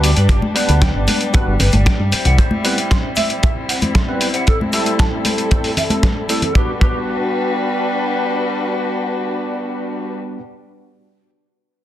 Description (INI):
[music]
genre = nu-disco, nu disco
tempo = 115 BPM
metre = 4/4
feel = straight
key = G major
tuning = A4 = 441 Hz
[part]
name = barky tine electric piano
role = accompaniment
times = 0.0-10.4 s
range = G3 to B4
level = -23 LUFS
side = equal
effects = ensemble chorus, sidechain pumping, dub echo
[part]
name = dark chamber violin section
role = sustained chords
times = 0.0-10.1 s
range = G3 to B4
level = -23 LUFS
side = left 2 dB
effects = sidechain pumping
[part]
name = mellow electric guitar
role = riff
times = 0.0-7.0 s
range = G4 to C6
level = -26 LUFS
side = right 2 dB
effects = analog chorus, low-pass filter, dub echo
[part]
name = fingered electric bass with an envelope filter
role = bass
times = 0.0-2.4 s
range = G1 to G2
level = -14 LUFS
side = equal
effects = sidechain pumping
[part]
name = dusty soul sampler-style drum kit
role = drums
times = 0.0-6.5 s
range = hi-hat, snare drum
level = -21 LUFS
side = left 1 dB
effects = overdrive
[part]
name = maracas and congas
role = percussion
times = 0.0-6.5 s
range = none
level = -24 LUFS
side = left 1 dB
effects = none
[part]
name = kick drum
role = drums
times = 0.3-7.0 s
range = none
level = -16 LUFS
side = equal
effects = soft clipping on snare
[sound]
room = moderate plate reverb, RT60 1.5 s, studio ambience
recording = dense, heavily limited modern master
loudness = -15 LUFS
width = side -12 dB against mid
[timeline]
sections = 0.0-6.6 A section; 6.6-10.7 B section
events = filter sweep on clean electric guitar 0.0-6.6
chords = 0.0 Gmaj7; 2.1 Cmaj7; 4.5 Am7; 6.6 Gmaj7